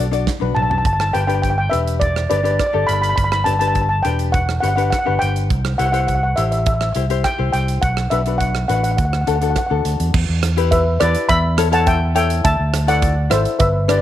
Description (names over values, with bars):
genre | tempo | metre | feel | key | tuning
calypso | 103 BPM | 4/4 | straight | G major | A4 = 440 Hz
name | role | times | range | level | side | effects
ukulele | accompaniment | 0.0-14.0 s | D4 to E5 | -24 LUFS | left 12 dB | none
fingered electric bass | bass | 0.0-14.0 s | E1 to E2 | -19 LUFS | equal | none
modern studio drum kit | drums | 0.1-14.0 s | crash cymbal, hi-hat, kick drum, rim click, snare drum, toms | -23 LUFS | right 2 dB | none
steel pan | melody | 0.5-14.0 s | B4 to B5 | -19 LUFS | equal | none
room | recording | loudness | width
light reverb, small room ambience | 1960s-style stereo | -15 LUFS | side -12 dB against mid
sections
0.0-10.1 A section; 10.1-14.0 B section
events
drum fill 0.3-0.9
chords
0.0 Bm; 0.9 G; 5.5 C; 7.8 Bm; 9.0 D; 10.1 Em; 11.3 A/E; 12.4 Dsus2